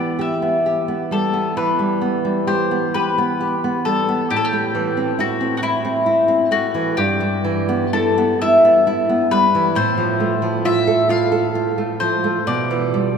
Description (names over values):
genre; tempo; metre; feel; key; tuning
romantic duo for mandolin and classical guitar; 44 BPM (dotted quarters); 12/8; rubato; E minor; A4 = 441 Hz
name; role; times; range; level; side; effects
mandolin; melody; 0.0-13.2 s; E4 to F5; -18 LUFS; left 2 dB; none
nylon-string guitar; accompaniment; 0.0-13.2 s; G2 to A4; -19 LUFS; right 2 dB; none
room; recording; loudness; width
wet cathedral reverb, RT60 5.6 s; recorded in a church or concert hall; -16 LUFS; side -6 dB against mid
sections
0.0-13.2 A section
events
none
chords
0.0 Em; 4.3 Am; 7.0 Em/G; 9.8 F/A; 12.5 Em/B